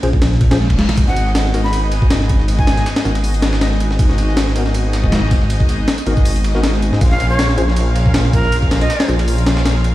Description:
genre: drum and bass, jungle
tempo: 159 BPM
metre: 4/4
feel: swing 54% on 16ths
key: G# dorian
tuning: A4 = 440 Hz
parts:
  - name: tine electric piano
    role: stabs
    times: 0.0-9.1 s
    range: B3 to B#4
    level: -26 LUFS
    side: left 2 dB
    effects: medium tremolo, vintage 12-bit sampler grit, low-pass filter, dub echo
  - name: detuned saw bass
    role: bass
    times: 0.0-9.9 s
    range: G#1 to G#2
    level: -16 LUFS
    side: equal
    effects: none
  - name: breakbeat sampler-style drum kit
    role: drums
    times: 0.0-9.9 s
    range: hi-hat, kick drum, ride cymbal, snare drum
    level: -17 LUFS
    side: equal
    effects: studio reverb
  - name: reverse cymbal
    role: sound effects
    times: 0.4-1.0 s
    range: none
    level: -32 LUFS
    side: left 4 dB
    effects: none
  - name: rich chamber string section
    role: sustained chords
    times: 1.0-9.9 s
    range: B3 to E#5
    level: -25 LUFS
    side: left 1 dB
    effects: none
  - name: breakbeat sampler-style drum kit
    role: drums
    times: 1.0-9.9 s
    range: hi-hat, snare drum, tambourine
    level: -31 LUFS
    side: right 2 dB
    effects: high-pass filter on perc, studio reverb, high-pass filter on snare, high-pass filter on hats, high-pass filter on room
  - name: breathy bright jazz flute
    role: melody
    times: 1.1-2.9, 7.1-9.1 s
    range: A#4 to B5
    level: -23 LUFS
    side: right 1 dB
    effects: dub echo
room: digital ambience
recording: played on a big sound system in a bare room, stone room reverb, vinyl crackle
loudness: -13 LUFS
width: side -15 dB against mid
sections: 0.0-9.9 A section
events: reverse cymbal 0.4-1.0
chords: 0.0 N.C.; 1.0 G#m7; 7.0 A#m7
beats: 0.22 0.60 | 0.97 1.35 1.73 2.11 | 2.48 2.86 3.24 3.62 | 3.99 4.37 4.75 5.13 | 5.50 5.88 6.26 6.63 | 7.01 7.39 7.77 8.14 | 8.52 8.90 9.28 9.65

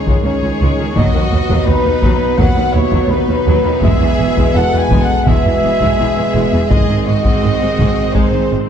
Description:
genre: cinematic, epic orchestral film score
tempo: 84 BPM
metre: 4/4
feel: straight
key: E major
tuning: A4 = 440 Hz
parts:
  - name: clear symphonic violin section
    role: melody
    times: 0.0-8.5 s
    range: D#4 to B4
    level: -26 LUFS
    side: left 6 dB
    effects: none
  - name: warm symphonic violin section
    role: second line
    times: 0.0-8.5 s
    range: B4 to G#5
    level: -23 LUFS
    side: left 2 dB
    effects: none
  - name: clear symphonic viola section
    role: accompaniment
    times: 0.0-8.7 s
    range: B#2 to D#4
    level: -23 LUFS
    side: right 3 dB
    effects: none
  - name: clear trombone section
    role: sustained chords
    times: 0.0-8.7 s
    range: B2 to G#3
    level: -20 LUFS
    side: right 3 dB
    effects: none
  - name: dark French horn section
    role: sustained chords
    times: 0.0-8.7 s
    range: B3 to B4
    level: -22 LUFS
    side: left 6 dB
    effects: none
  - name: rich symphonic cello section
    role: bass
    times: 0.1-8.6 s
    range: C#2 to G#2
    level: -20 LUFS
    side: right 2 dB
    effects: none
  - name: taiko ensemble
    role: drums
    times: 0.1-8.7 s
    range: none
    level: -17 LUFS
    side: left 1 dB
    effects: none
  - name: mellow trumpet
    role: stabs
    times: 0.2-8.5 s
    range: B4 to G#5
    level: -20 LUFS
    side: right 1 dB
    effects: none
  - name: rich studio double bass section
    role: bass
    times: 0.3-8.6 s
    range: E1 to D#2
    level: -19 LUFS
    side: right 3 dB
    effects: none
room: wet scoring stage reverb, RT60 1.6 s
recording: dark, warm production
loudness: -11 LUFS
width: side -8 dB against mid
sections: 0.0-8.7 A section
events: none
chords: 0.0 C#sus2; 1.0 B/D#; 3.8 E; 6.7 G#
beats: 0.25 | 0.96 1.68 2.39 3.10 | 3.83 4.55 5.27 5.99 | 6.71 7.43 8.15

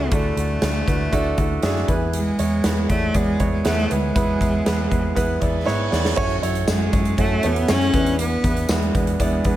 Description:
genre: piano-driven pop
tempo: 119 BPM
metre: 4/4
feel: straight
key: unclear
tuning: A4 = 436 Hz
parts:
  - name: clear cello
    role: melody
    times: 0.0-9.6 s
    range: G#3 to D4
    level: -23 LUFS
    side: equal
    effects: none
  - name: warm concert grand piano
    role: accompaniment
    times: 0.0-9.6 s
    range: D3 to E5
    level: -24 LUFS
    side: right 3 dB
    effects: none
  - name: vintage muted fingered electric bass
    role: bass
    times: 0.0-9.6 s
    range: D2 to G#2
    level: -24 LUFS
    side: equal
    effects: none
  - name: huge arena drum kit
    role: drums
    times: 0.1-9.6 s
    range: crash cymbal, hi-hat, kick drum, snare drum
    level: -23 LUFS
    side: equal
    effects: none
  - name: reverse cymbal and impact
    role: sound effects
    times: 5.4-8.2 s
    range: none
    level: -34 LUFS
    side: right 2 dB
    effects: none
  - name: tambourine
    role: percussion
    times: 6.7-8.8 s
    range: none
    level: -33 LUFS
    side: left 7 dB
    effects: none
room: little or no reverb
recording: none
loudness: -18 LUFS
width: side -13 dB against mid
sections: 0.0-6.2 A section; 6.2-9.6 B section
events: reverse cymbal 5.4-6.2; drum fill 5.7-6.2; impact 6.2-8.2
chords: 0.0 Dadd9; 1.9 E; 6.2 F#m7; 7.9 E7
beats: | 0.12 0.62 1.13 1.63 | 2.14 2.64 3.15 3.65 | 4.15 4.66 5.16 5.67 | 6.17 6.67 7.18 7.68 | 8.19 8.69 9.20

